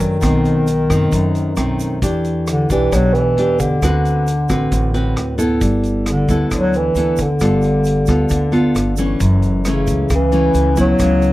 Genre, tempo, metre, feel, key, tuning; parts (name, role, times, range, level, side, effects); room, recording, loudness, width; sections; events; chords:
bossa nova; 134 BPM; 4/4; straight; A4 = 440 Hz
mellow bass clarinet; melody; 0.0-11.3 s; C#3 to F#3; -17 LUFS; equal; slapback echo
nylon-string guitar; accompaniment; 0.0-11.3 s; F#2 to B4; -18 LUFS; left 1 dB
upright bass; bass; 0.0-11.3 s; F#1 to F#2; -20 LUFS; equal
vintage drum kit; drums; 0.0-11.3 s; hi-hat, kick drum, rim click; -25 LUFS; equal
egg shaker; percussion; 0.0-11.3 s; -36 LUFS; right 10 dB
little or no reverb; dry, close 1970s-style studio recording; -14 LUFS; side -17 dB against mid
0.0-11.3 A section
0.2 B7b9; 2.0 Em7; 3.8 D13; 5.6 G69; 7.4 G9; 9.2 F#m7